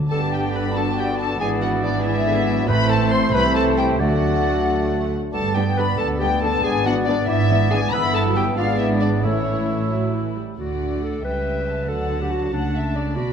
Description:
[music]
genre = quick classical-period movement for symphony orchestra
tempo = 92 BPM (dotted quarters)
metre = 6/8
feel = rubato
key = G major, D major from 7.9 s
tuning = A4 = 440 Hz
[part]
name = timpani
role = percussion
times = 0.0-0.1, 2.7-4.6, 9.2-9.9 s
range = A2 to D3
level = -26 LUFS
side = equal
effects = none
[part]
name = warm chamber violin section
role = melody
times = 0.1-13.3 s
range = C#5 to C6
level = -26 LUFS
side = left 4 dB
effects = none
[part]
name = clear clarinet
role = second line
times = 0.1-13.3 s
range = C#4 to C5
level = -27 LUFS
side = left 1 dB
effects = none
[part]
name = clear oboe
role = second line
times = 0.1-10.4 s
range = C5 to E5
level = -30 LUFS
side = right 1 dB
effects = none
[part]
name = small flute group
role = second line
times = 0.1-9.9 s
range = C#5 to C6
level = -29 LUFS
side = left 2 dB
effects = none
[part]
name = warm chamber violin section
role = second line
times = 0.1-13.3 s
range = A3 to F#5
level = -30 LUFS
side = left 2 dB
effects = none
[part]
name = dark chamber viola section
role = accompaniment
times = 0.1-13.3 s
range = D3 to D4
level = -30 LUFS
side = right 2 dB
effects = none
[part]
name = warm bassoon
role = accompaniment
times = 0.1-10.4 s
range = A3 to B3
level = -30 LUFS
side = right 3 dB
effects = none
[part]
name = clear French horn section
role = sustained chords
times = 0.1-10.4 s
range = A3 to E4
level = -27 LUFS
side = left 6 dB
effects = none
[part]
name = dark chamber double bass section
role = bass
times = 0.1-13.3 s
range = G1 to D2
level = -26 LUFS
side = right 4 dB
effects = none
[part]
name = warm chamber cello section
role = bass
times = 0.1-13.3 s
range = C2 to D3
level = -27 LUFS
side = right 3 dB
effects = none
[sound]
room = moderate scoring stage reverb, RT60 1.8 s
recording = dark, warm production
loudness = -18 LUFS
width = side -7 dB against mid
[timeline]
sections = 0.1-10.6 A section; 10.6-13.3 B section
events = none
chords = 0.1 G; 1.4 E7/G#; 2.7 Am; 3.3 Am/C; 4.0 D; 5.3 G; 6.6 E7/G#; 7.9 Em/G; 8.6 G#dim; 9.2 A; 10.6 D; 11.2 A7/C#; 11.9 D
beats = | 0.11 0.76 | 1.41 2.04 | 2.69 3.33 | 4.00 4.67 | 5.34 5.99 | 6.64 7.29 | 7.93 8.58 | 9.24 9.91 | 10.59 11.24 | 11.89 12.53 | 13.16

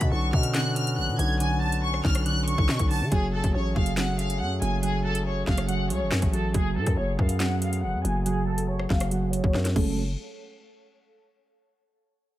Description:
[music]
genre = hip hop, drill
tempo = 140 BPM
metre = 4/4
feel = half-time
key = F# harmonic minor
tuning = A4 = 440 Hz
[part]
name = rich studio violin section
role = melody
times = 0.0-10.0 s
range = G#4 to G#6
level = -31 LUFS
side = left 1 dB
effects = low-pass filter, tape echo
[part]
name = soft electric-piano-like synth keys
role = accompaniment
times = 0.0-10.0 s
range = D3 to C#4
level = -30 LUFS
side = right 3 dB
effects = chorus, low-pass filter
[part]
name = mellow accordion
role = sustained chords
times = 0.0-10.0 s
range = D3 to G#4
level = -36 LUFS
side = left 1 dB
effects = low-pass filter
[part]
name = growling 808-style bass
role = bass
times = 0.0-10.2 s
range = E#1 to D3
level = -28 LUFS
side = equal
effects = none
[part]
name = drill drum kit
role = drums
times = 0.0-9.9 s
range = crash cymbal, handclaps, hi-hat, kick drum, rim click, snare drum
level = -26 LUFS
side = equal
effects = overdrive
[sound]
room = little or no reverb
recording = none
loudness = -23 LUFS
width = side -14 dB against mid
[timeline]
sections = 0.0-3.1 A section; 3.1-10.0 B section; 10.0-11.7 C section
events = filter sweep 3.1-10.0; drum fill 9.5-10.0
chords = 0.0 Bmadd9; 3.1 F#madd9; 10.0 N.C.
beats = 0.12 0.55 0.97 | 1.40 1.83 2.26 2.69 | 3.12 3.55 3.97 4.40 | 4.83 5.26 5.69 6.12 | 6.55 6.97 7.40 7.83 | 8.26 8.69 9.12 9.55 | 9.97

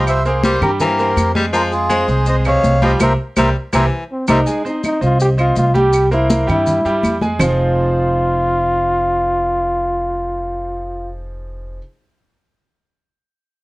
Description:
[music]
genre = latin, salsa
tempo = 164 BPM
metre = 4/4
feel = straight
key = F minor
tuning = A4 = 440 Hz
[part]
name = melodica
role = melody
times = 0.0-4.4 s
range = F4 to F5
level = -18 LUFS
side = equal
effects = none
[part]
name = bright baritone saxophone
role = second line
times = 0.0-4.4 s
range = E3 to Ab3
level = -21 LUFS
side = left 2 dB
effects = none
[part]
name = bright grand piano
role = accompaniment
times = 0.0-11.8 s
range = C3 to Ab5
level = -22 LUFS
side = right 2 dB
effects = none
[part]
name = upright bass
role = bass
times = 0.0-11.8 s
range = F1 to G2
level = -19 LUFS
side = equal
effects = none
[part]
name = claves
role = percussion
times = 0.1-7.5 s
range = none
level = -27 LUFS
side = right 1 dB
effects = none
[part]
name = congas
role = percussion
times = 0.1-7.5 s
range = none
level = -20 LUFS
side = equal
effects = none
[part]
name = maracas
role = percussion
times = 0.1-7.5 s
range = none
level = -33 LUFS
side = left 3 dB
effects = none
[part]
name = warm trombone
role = melody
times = 4.1-11.1 s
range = C4 to G4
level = -17 LUFS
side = equal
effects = none
[sound]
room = moderate studio reverb, RT60 0.6 s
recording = worn, warbling old tape, cassette tape, warbly pitch drift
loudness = -14 LUFS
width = side -20 dB against mid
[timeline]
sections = 0.0-4.5 A section; 4.5-7.4 B section; 7.4-10.3 C section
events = band accent 3.0-4.5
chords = 0.1 C7; 1.5 Fm7; 3.0 C7; 4.5 Cmadd11; 5.9 C7; 7.4 Fm7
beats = | 0.06 0.43 0.80 1.17 | 1.53 1.90 2.27 2.63 | 3.00 3.37 3.73 4.10 | 4.47 4.83 5.20 5.57 | 5.93 6.30 6.67 7.03 | 7.40 7.77 8.13 8.50 | 8.87 9.24 9.61 9.97

